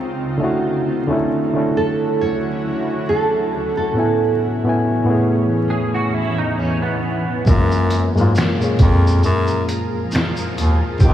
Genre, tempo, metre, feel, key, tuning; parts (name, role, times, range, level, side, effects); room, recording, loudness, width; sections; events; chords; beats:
lo-fi hip hop; 68 BPM; 4/4; swing 56% on 16ths; A4 = 440 Hz
bright reed electric piano; accompaniment; 0.0-11.1 s; Gb2 to G#5; -19 LUFS; left 1 dB; cassette tape, low-pass filter
granular cloud pad; sustained chords; 0.0-11.1 s; Db3 to Bb4; -25 LUFS; right 1 dB; built-in reverb, low-pass filter
nylon-string guitar; melody; 1.8-11.1 s; F4 to C#5; -22 LUFS; right 4 dB; lush chorus, low-pass filter, diffuse ambient delay
semi-hollow electric guitar; second line; 5.7-7.4 s; B3 to G#4; -25 LUFS; right 3 dB; ensemble chorus, low-pass filter, diffuse ambient delay
bright bass clarinet; bass; 7.5-11.1 s; Db2 to Ab2; -16 LUFS; equal
lo-fi sampler-style drum kit; drums; 7.5-11.1 s; finger snaps, hi-hat, kick drum, shaker, snare drum; -17 LUFS; equal
moderate huge ambient reverb, RT60 4.2 s; dreamy mix soaked in reverb, vinyl crackle, small room reverb; -16 LUFS; side -11 dB against mid
0.0-11.1 A section
0.4 Dmaj9; 3.9 Amaj9; 7.5 Gbmaj9
| 0.41 1.29 2.17 3.06 | 3.94 4.82 5.71 6.59 | 7.47 8.35 9.23 10.12 | 11.00